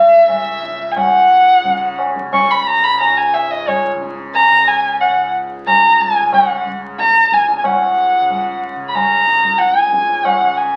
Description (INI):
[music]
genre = indian classical, Hindustani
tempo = 90 BPM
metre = 5/4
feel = straight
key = C# raga bhimpalasi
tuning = A4 = 438 Hz
[part]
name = dark violin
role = melody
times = 0.0-10.8 s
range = C#5 to C#6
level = -14 LUFS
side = equal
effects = none
[part]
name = tanpura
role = drone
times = 0.0-10.8 s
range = C#2 to C#3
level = -32 LUFS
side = equal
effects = none
[part]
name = tabla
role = percussion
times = 0.3-10.5 s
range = none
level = -24 LUFS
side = equal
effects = none
[sound]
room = wet large studio reverb, RT60 0.9 s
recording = very old 78 rpm record, vinyl crackle, faint mains hum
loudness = -14 LUFS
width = mono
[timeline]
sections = 0.0-7.6 A section; 7.6-10.8 B section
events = speeding up 0.0-10.8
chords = none